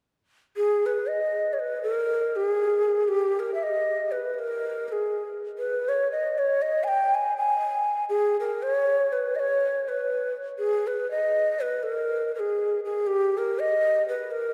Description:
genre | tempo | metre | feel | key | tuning
balkan folk | free time | none | none | G# harmonic minor | A4 = 440 Hz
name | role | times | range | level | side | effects
breathy mellow ney | solo | 0.6-14.5 s | G4 to G#5 | -26 LUFS | equal | none
room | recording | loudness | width
wet cathedral reverb, RT60 4.1 s | recorded in a church or concert hall | -26 LUFS | mono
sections
0.6-10.6 A section; 10.6-14.5 A section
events
none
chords
none

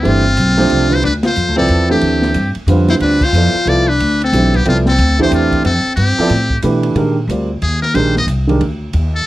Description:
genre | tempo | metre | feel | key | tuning
modal jazz | 182 BPM | 3/4 | swing 63% on 8ths | G mixolydian | A4 = 440 Hz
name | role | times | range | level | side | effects
trumpet with metal mute | melody | 0.0-9.3 s | F4 to Eb5 | -18 LUFS | left 1 dB | none
bright alto saxophone | second line | 0.0-6.6 s | B3 to F4 | -18 LUFS | left 2 dB | none
warm upright piano | accompaniment | 0.0-8.6 s | D3 to D5 | -16 LUFS | right 2 dB | none
upright bass | bass | 0.0-9.3 s | G1 to B2 | -16 LUFS | equal | none
open jazz drum kit | drums | 0.0-9.0 s | crash cymbal, hi-hat, kick drum, ride cymbal, snare drum | -25 LUFS | equal | none
room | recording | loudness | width
light reverb | worn, warbling old tape, cassette tape, warbly pitch drift | -11 LUFS | side -16 dB against mid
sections
0.0-7.0 A section; 7.0-9.3 B section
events
band accent 1.2, 3.2; muted trumpet solo 7.0-9.3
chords
0.0 G7sus4; 7.0 Bb7sus4

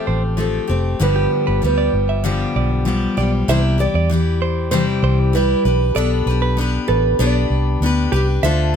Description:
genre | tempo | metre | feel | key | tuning
pop | 97 BPM | 4/4 | straight | unclear | A4 = 439 Hz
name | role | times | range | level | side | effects
nylon-string guitar | melody | 0.0-8.8 s | A4 to D5 | -22 LUFS | right 2 dB | none
picked steel-string acoustic guitar | accompaniment | 0.0-8.8 s | G2 to B4 | -20 LUFS | left 4 dB | none
direct-recorded clean electric guitar | arpeggios | 0.0-8.7 s | G4 to F5 | -25 LUFS | right 6 dB | none
vintage muted fingered electric bass | bass | 0.1-8.8 s | F1 to E2 | -18 LUFS | right 1 dB | none
room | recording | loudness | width
little or no reverb | close, detailed microphones | -15 LUFS | side -7 dB against mid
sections
0.0-3.5 A section; 3.5-8.8 B section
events
none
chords
0.0 Fadd9; 1.0 G7; 3.5 C; 5.6 G

